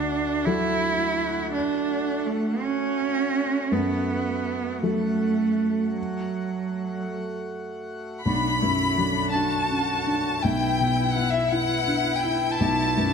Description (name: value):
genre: neoclassical piano and strings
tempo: 55 BPM (dotted quarters)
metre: 6/8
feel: rubato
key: unclear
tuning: A4 = 441 Hz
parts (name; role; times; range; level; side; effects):
- rich cello; second line; 0.0-13.1 s; F#3 to F#4; -26 LUFS; right 4 dB; none
- felt-muted upright piano; accompaniment; 0.0-13.1 s; B1 to A4; -26 LUFS; left 1 dB; none
- hand-pumped harmonium; sustained chords; 0.0-13.1 s; A3 to F#5; -35 LUFS; left 1 dB; none
- clear chamber violin section; melody; 8.2-13.1 s; E5 to B5; -24 LUFS; left 3 dB; none
room: moderate scoring stage reverb, RT60 2.0 s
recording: none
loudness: -22 LUFS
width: side -6 dB against mid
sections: 0.0-8.3 A section; 8.3-13.1 B section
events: none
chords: 0.0 D; 3.7 F#m; 8.3 Dmaj7/B; 10.4 Em/B; 12.6 Bm7